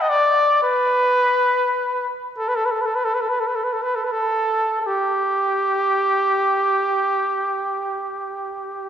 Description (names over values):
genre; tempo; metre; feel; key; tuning
classical, free, expressive piece for unaccompanied trumpet; 42-56 BPM; 4/4; rubato; G major; A4 = 440 Hz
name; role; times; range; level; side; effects
warm trumpet; solo; 0.0-8.9 s; G4 to Eb5; -18 LUFS; equal; none
room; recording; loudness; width
wet concert hall reverb, RT60 2.0 s; heard from further back in the room; -18 LUFS; side -9 dB against mid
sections
0.0-8.9 A section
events
none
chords
none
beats
| 0.08 1.19 2.37 3.57 | 4.85 6.24 7.64